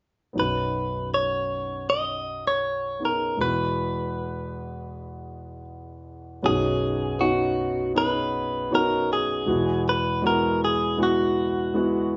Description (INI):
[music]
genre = pop ballad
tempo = 79 BPM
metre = 4/4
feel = straight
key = B major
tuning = A4 = 442 Hz
[part]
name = warm concert grand piano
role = accompaniment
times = 0.3-12.2 s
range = B1 to G#4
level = -29 LUFS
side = equal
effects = none
[part]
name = direct-recorded clean electric guitar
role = melody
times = 0.4-12.1 s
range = F#4 to D#5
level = -27 LUFS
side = equal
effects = none
[sound]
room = wet large studio reverb, RT60 0.8 s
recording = band playing live in one room, nothing above 7.6 kHz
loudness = -25 LUFS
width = mono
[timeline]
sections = 0.4-6.4 A section; 6.4-12.2 B section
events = none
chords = 0.4 Badd9; 3.4 Eadd9; 6.4 Badd9; 9.5 Eadd9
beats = | 0.36 1.12 1.88 2.64 | 3.40 4.16 4.91 5.67 | 6.43 7.19 7.95 8.71 | 9.47 10.23 10.99 11.75